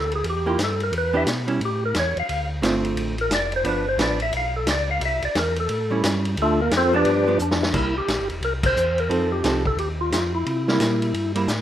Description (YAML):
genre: soul jazz organ trio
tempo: 176 BPM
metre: 4/4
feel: swing 62% on 8ths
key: unclear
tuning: A4 = 440 Hz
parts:
  - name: percussive tonewheel organ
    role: melody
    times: 0.0-11.3 s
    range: A3 to F5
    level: -23 LUFS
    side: left 1 dB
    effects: fast rotary speaker
  - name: mellow tonewheel organ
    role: bass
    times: 0.0-11.6 s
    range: E1 to C3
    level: -27 LUFS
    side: equal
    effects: slow rotary speaker
  - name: vintage drum kit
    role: drums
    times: 0.1-11.6 s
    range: crash cymbal, hi-hat, kick drum, ride cymbal, snare drum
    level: -27 LUFS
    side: equal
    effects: none
  - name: archtop guitar, miked and amplified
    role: accompaniment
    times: 0.5-11.5 s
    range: D3 to A4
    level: -25 LUFS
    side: right 3 dB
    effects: none
room: light reverb, small room reverb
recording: rough home demo mix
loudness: -20 LUFS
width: side -11 dB against mid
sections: 0.0-7.7 A section; 7.7-11.6 B section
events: tonewheel organ solo 0.0-7.7; drum fill 7.4-7.7; band accent 8.6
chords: 0.0 C7 (rootless); 0.9 Em7; 1.6 A5; 2.3 Dm7; 3.7 G7; 5.0 C; 5.7 A7; 6.4 Dm7; 7.1 G7; 7.7 C7; 9.1 F7; 10.5 C7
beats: 0.25 0.59 | 0.93 1.27 1.61 1.95 | 2.29 2.63 2.97 3.31 | 3.65 3.99 4.33 4.67 | 5.01 5.36 5.70 6.04 | 6.38 6.72 7.06 7.40 | 7.74 8.08 8.42 8.76 | 9.10 9.44 9.78 10.12 | 10.46 10.80 11.14 11.48